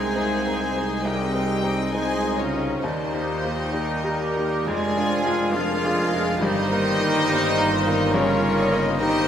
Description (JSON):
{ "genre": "classical, romantic movement for piano and orchestra", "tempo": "68 BPM", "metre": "4/4", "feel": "rubato", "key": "Ab major", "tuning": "A4 = 440 Hz", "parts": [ { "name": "clear baby grand piano", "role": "melody", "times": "0.0-9.3 s", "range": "C2 to Bb4", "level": "-26 LUFS", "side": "left 1 dB", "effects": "none" }, { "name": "warm symphonic violin section", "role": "melody", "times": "0.0-9.3 s", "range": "Db5 to Ab5", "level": "-29 LUFS", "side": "left 3 dB", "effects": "none" }, { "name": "mellow clarinet", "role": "second line", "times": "0.0-9.3 s", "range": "C4 to G4", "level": "-33 LUFS", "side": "left 2 dB", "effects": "none" }, { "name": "mellow concert flute", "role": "second line", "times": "0.0-9.3 s", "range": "F4 to D5", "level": "-32 LUFS", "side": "left 1 dB", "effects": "none" }, { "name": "warm symphonic violin section", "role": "second line", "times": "0.0-9.3 s", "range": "G3 to Eb4", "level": "-34 LUFS", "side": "left 2 dB", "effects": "none" }, { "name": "mellow bassoon", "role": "accompaniment", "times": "0.0-9.3 s", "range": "F3 to C4", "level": "-33 LUFS", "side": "right 2 dB", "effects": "none" }, { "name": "warm studio viola section", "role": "accompaniment", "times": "0.0-9.3 s", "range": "Ab4 to Eb5", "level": "-32 LUFS", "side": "left 1 dB", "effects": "none" }, { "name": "mellow French horn section", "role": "sustained chords", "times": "0.0-9.3 s", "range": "Db3 to Ab3", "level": "-33 LUFS", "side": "left 3 dB", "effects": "none" }, { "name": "mellow trumpet section", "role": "stabs", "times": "0.0-9.3 s", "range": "Db4 to Ab4", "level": "-29 LUFS", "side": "right 2 dB", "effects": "none" }, { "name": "mellow tuba", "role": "bass", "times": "0.0-9.3 s", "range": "F1 to Eb2", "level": "-34 LUFS", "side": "right 3 dB", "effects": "none" }, { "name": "rich symphonic cello section", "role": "bass", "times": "0.0-9.3 s", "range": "Db3 to Ab3", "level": "-32 LUFS", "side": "right 3 dB", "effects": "none" }, { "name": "rich symphonic double bass section", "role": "bass", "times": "0.0-9.3 s", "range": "G1 to F2", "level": "-32 LUFS", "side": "right 3 dB", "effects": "none" } ], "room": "wet scoring stage reverb, RT60 1.8 s", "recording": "none", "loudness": "-20 LUFS", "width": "side -9 dB against mid", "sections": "0.0-9.3 A section", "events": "none", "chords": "0.0 Ab/C; 2.8 Eb; 4.7 Ddim/F; 6.4 Eb/G" }